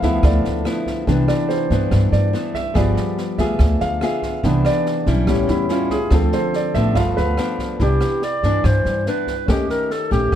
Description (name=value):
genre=bossa nova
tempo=143 BPM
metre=4/4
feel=straight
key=C major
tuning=A4 = 442 Hz
part: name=clear grand piano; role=accompaniment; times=0.0-10.4 s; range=E3 to B5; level=-22 LUFS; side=right 1 dB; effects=none
part: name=nylon-string guitar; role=accompaniment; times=0.0-10.4 s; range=G2 to Ab4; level=-24 LUFS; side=left 4 dB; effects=none
part: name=upright bass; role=bass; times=0.0-10.4 s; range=G1 to G2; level=-18 LUFS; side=equal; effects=none
part: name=open jazz drum kit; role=drums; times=0.0-10.4 s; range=kick drum, rim click, snare drum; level=-26 LUFS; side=equal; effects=none
part: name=dark clarinet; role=melody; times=7.8-10.4 s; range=G4 to D5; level=-21 LUFS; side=right 1 dB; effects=plate reverb
room=light reverb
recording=dark, warm production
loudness=-16 LUFS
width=side -10 dB against mid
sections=0.0-7.8 A section; 7.8-10.4 B section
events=grand piano solo 0.0-7.8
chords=0.0 G13; 1.1 Cmaj9; 2.8 G7b9; 4.4 Cmaj9; 5.3 A7; 6.1 Dm7; 7.0 G7; 7.8 Cmaj9; 9.5 Eb7#11